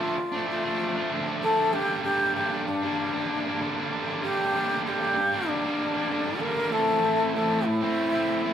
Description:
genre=rock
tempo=96 BPM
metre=4/4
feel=straight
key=G dorian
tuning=A4 = 441 Hz
part: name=bansuri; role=melody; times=0.0-8.5 s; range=D4 to Bb4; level=-26 LUFS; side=left 1 dB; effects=none
part: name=distorted electric guitar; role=riff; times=0.0-8.5 s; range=G2 to E4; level=-27 LUFS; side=right 1 dB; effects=distortion
room=wet stone room reverb, RT60 1.3 s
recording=band playing live in one room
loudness=-24 LUFS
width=side -9 dB against mid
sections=0.0-8.5 A section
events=none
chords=0.0 Dm; 1.7 Gm; 6.7 Am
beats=0.49 1.11 | 1.74 2.36 2.98 3.60 | 4.23 4.85 5.47 6.10 | 6.72 7.34 7.97

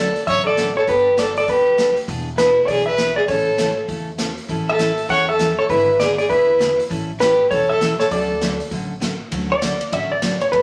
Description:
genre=country, western swing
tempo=199 BPM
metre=4/4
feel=swing 62% on 8ths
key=D major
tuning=A4 = 439 Hz
part: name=clean lap steel guitar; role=melody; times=0.0-10.6 s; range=B4 to F#5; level=-20 LUFS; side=equal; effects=none
part: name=warm fiddle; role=second line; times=0.0-8.6 s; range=E4 to C#5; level=-24 LUFS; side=equal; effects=none
part: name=picked steel-string acoustic guitar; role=accompaniment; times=0.0-10.6 s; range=C#3 to A4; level=-29 LUFS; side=equal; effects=none
part: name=upright bass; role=bass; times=0.0-10.6 s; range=E1 to E2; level=-36 LUFS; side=equal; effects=none
part: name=swinging big-band drum kit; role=drums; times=0.2-10.6 s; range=hi-hat, kick drum, ride cymbal, snare drum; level=-31 LUFS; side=equal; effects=none
room=wet studio reverb, RT60 0.7 s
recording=none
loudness=-18 LUFS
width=mono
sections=0.0-9.3 A section; 9.3-10.6 A section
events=none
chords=0.0 Dmaj7; 0.9 Gadd9; 2.1 E7; 3.3 A; 4.5 A7; 5.7 E7/G#; 6.9 A7; 8.1 Dmaj7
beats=0.27 0.57 | 0.87 1.17 1.47 1.77 | 2.07 2.38 2.68 2.98 | 3.28 3.58 3.88 4.18 | 4.49 4.79 5.09 5.39 | 5.69 6.00 6.30 6.60 | 6.90 7.20 7.50 7.80 | 8.11 8.41 8.71 9.01 | 9.31 9.62 9.92 10.22 | 10.52

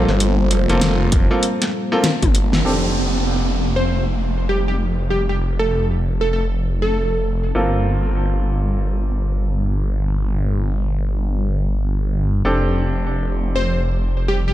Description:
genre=glitch hop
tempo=98 BPM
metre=4/4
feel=swing 61% on 16ths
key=unclear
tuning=A4 = 442 Hz
part: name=dark analog pad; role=sustained chords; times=0.0-14.5 s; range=G3 to D6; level=-28 LUFS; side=left 1 dB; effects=chorus, sidechain pumping
part: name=clear grand piano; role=stabs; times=0.0-14.5 s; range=Bb3 to A4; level=-24 LUFS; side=equal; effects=sidechain pumping, low-pass filter, analog delay
part: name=phased detuned saw bass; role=bass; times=0.0-14.5 s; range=F1 to G1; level=-19 LUFS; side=equal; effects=phaser
part: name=pop drum kit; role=drums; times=0.1-2.6 s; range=hi-hat, snare drum, toms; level=-22 LUFS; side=left 1 dB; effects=none
part: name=electronic kick drum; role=drums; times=1.1-2.3 s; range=none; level=-17 LUFS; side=equal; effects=none
part: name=downlifter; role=sound effects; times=2.6-7.5 s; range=none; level=-25 LUFS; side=right 2 dB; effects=none
part: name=plucky unison lead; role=melody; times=3.8-7.4, 13.6-14.5 s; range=G4 to C5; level=-23 LUFS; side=equal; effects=analog delay
room=light reverb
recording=echo-heavy mix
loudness=-17 LUFS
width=side -13 dB against mid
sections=0.0-2.7 A section; 2.7-14.5 B section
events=drum fill 2.0-2.7; band accent 2.5-2.8; filter sweep on grand piano 2.7-14.5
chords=0.0 Gm11; 2.7 F69; 7.6 Gm11; 12.4 F69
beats=| 0.20 0.82 1.43 2.04 | 2.65 3.27 3.88 4.49 | 5.10 5.71 6.33 6.94 | 7.55 8.16 8.78 9.39 | 10.00 10.61 11.22 11.84 | 12.45 13.06 13.67 14.29

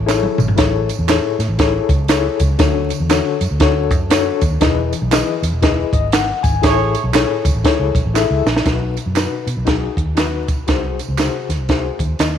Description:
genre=uptempo 1960s-style soul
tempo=119 BPM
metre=4/4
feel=swing 61% on 8ths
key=B mixolydian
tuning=A4 = 439 Hz
part: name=vintage muted fingered electric bass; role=bass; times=0.0-12.4 s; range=E1 to B2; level=-20 LUFS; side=equal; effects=none
part: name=mellow reed electric piano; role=accompaniment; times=0.1-12.4 s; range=A2 to G#5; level=-20 LUFS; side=left 9 dB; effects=fast tremolo
part: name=compact cocktail drum kit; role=drums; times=0.1-12.3 s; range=hi-hat, kick drum, snare drum, toms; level=-17 LUFS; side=right 1 dB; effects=none
part: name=handclaps and tambourine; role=percussion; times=0.1-12.3 s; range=none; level=-28 LUFS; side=right 11 dB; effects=none
part: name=mellow horn section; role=second line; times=6.6-7.0 s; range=A3 to C#5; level=-21 LUFS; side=right 10 dB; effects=none
room=light reverb, studio reverb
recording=1960s-style stereo with parts hard left and right, vinyl crackle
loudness=-14 LUFS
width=side -9 dB against mid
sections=0.0-8.7 A section; 8.7-12.4 B section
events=drum fill 0.1-0.6, 8.1-8.7; band accent 6.6-8.7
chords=0.0 Amaj7; 2.6 Dmaj7; 4.6 Emaj7; 6.6 Amaj7; 8.7 B; 10.7 G#7/B#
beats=0.08 | 0.58 1.09 1.59 2.10 | 2.60 3.10 3.61 4.11 | 4.62 5.12 5.62 6.13 | 6.63 7.14 7.64 8.15 | 8.65 9.16 9.66 10.17 | 10.68 11.18 11.69 12.20

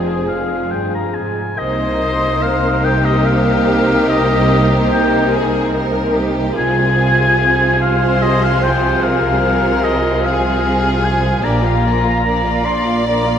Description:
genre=cinematic, emotional film score for orchestra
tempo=49 BPM (dotted quarters)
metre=6/8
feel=rubato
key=C minor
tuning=A4 = 441 Hz
part: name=warm studio violin section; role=melody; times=0.0-13.4 s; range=C4 to D5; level=-22 LUFS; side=right 1 dB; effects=none
part: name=warm oboe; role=second line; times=0.0-13.4 s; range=Ab4 to C6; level=-18 LUFS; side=left 3 dB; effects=none
part: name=warm studio violin section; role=second line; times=0.0-13.4 s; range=F4 to F5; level=-22 LUFS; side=left 1 dB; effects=none
part: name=warm studio viola section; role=accompaniment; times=0.0-13.4 s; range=F3 to Ab4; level=-21 LUFS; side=right 3 dB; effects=none
part: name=mellow French horn section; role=sustained chords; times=0.0-1.2 s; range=F4 to Ab4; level=-28 LUFS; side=equal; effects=none
part: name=warm studio cello section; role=bass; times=0.0-13.4 s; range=F2 to C3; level=-21 LUFS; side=equal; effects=none
part: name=warm studio double bass section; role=bass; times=0.0-13.4 s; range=F1 to C2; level=-21 LUFS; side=equal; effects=none
room=wet cathedral reverb, RT60 6.0 s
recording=in a vast, echoing space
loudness=-13 LUFS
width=side -8 dB against mid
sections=0.0-1.6 A section; 1.6-13.4 B section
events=none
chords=0.0 Fm; 1.6 Cm7; 6.6 Fm/C; 11.4 Bb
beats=0.29 | 1.59 2.85 | 4.10 5.33 | 6.58 7.82 | 9.04 10.24 | 11.45 12.65

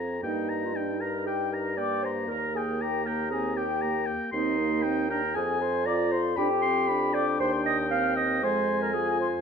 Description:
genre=quick classical-period movement for wind quintet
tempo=117 BPM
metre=4/4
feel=straight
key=Eb major, C minor from 4.3 s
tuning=A4 = 440 Hz
part: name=clear oboe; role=second line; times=0.0-9.4 s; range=G5 to C6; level=-32 LUFS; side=left 4 dB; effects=none
part: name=mellow French horn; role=accompaniment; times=0.0-9.4 s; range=Ab3 to F4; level=-33 LUFS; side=left 1 dB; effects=none
part: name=mellow bassoon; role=bass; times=0.0-9.4 s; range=Eb2 to G2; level=-32 LUFS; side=right 1 dB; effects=none
part: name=mellow concert flute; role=melody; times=0.2-9.3 s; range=Eb5 to F6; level=-33 LUFS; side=left 12 dB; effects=none
part: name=mellow clarinet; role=accompaniment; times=0.2-9.4 s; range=D4 to F5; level=-30 LUFS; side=right 7 dB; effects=none
room=moderate scoring stage reverb, RT60 1.5 s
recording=none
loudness=-25 LUFS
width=side -6 dB against mid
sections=0.0-9.4 A section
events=none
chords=0.2 Eb/G; 2.3 Eb; 4.3 Cm/Eb; 5.4 Fm; 6.4 G7/F; 7.4 Cm/Eb; 8.4 Fm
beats=| 0.24 0.75 1.27 1.78 | 2.29 2.80 3.31 3.82 | 4.34 4.85 5.36 5.87 | 6.38 6.89 7.40 7.92 | 8.43 8.95

